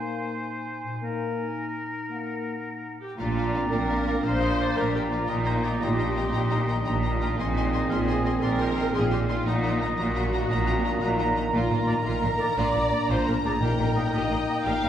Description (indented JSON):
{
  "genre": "cinematic, heroic adventure film score",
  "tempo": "115 BPM (dotted quarters)",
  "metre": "12/8",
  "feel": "straight",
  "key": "unclear",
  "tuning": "A4 = 439 Hz",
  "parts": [
    { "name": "clear oboe", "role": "second line", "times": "0.0-14.5 s", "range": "Bb4 to Gb5", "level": "-35 LUFS", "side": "left 1 dB", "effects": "none" },
    { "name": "concert flute", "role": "second line", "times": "0.0-14.6 s", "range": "F5 to C6", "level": "-36 LUFS", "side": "equal", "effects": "none" },
    { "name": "dark clarinet", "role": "second line", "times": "0.0-14.5 s", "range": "Bb3 to Eb4", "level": "-36 LUFS", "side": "equal", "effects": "none" },
    { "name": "mellow French horn section", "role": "sustained chords", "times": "0.0-14.9 s", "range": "Eb3 to Eb4", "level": "-31 LUFS", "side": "left 1 dB", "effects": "none" },
    { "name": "concert harp", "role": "arpeggios", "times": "0.0-14.9 s", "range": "Bb2 to C5", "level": "-36 LUFS", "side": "left 3 dB", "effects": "none" },
    { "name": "warm symphonic viola section", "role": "accompaniment", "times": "3.0-14.9 s", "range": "Eb4 to F5", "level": "-30 LUFS", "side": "equal", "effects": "none" },
    { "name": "warm symphonic violin section", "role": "melody", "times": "3.2-14.9 s", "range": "F5 to C6", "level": "-37 LUFS", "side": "left 4 dB", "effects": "none" },
    { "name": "warm symphonic violin section", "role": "second line", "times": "3.2-14.9 s", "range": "F4 to Bb5", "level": "-38 LUFS", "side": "left 2 dB", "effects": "none" },
    { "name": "clear trumpet section", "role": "stabs", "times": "3.2-14.9 s", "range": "Ab4 to Bb5", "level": "-34 LUFS", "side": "right 2 dB", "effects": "none" },
    { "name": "clear symphonic cello section", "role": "bass", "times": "3.2-14.9 s", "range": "Bb2", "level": "-29 LUFS", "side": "right 1 dB", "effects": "none" },
    { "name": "warm symphonic double bass section", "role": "bass", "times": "3.2-14.9 s", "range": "Bb1", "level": "-30 LUFS", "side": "right 2 dB", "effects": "none" },
    { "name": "timpani", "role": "percussion", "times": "13.6-14.1 s", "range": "Bb2", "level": "-30 LUFS", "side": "left 1 dB", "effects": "none" }
  ],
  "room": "wet recital hall reverb, RT60 1.6 s",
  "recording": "recorded in a church or concert hall",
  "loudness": "-23 LUFS",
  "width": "side -10 dB against mid",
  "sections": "0.0-3.2 A section; 3.2-14.9 B section",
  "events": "none",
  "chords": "0.0 Ab/Bb; 1.0 Ebm/Bb; 3.2 Bb; 5.3 Eb/Bb; 7.4 Ab/Bb; 9.5 Ebm/Bb; 11.5 Bb; 13.6 Eb/Bb"
}